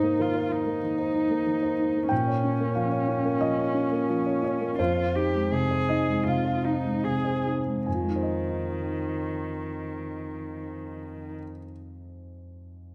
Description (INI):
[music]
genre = neoclassical piano and strings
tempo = 71-95 BPM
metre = 4/4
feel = rubato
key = F minor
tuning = A4 = 441 Hz
[part]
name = muted cello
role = second line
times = 0.0-11.3 s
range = Eb3 to Ab4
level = -33 LUFS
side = equal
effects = none
[part]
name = dark grand piano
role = accompaniment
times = 0.0-12.9 s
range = F2 to Ab5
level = -29 LUFS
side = equal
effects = none
[sound]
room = moderate recital hall reverb, RT60 1.6 s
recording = none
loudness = -27 LUFS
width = mono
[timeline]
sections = 0.0-7.9 A section; 7.9-11.0 B section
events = slowing down 0.8-7.9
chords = 0.0 Abadd9; 2.1 Bbm; 4.8 Fm7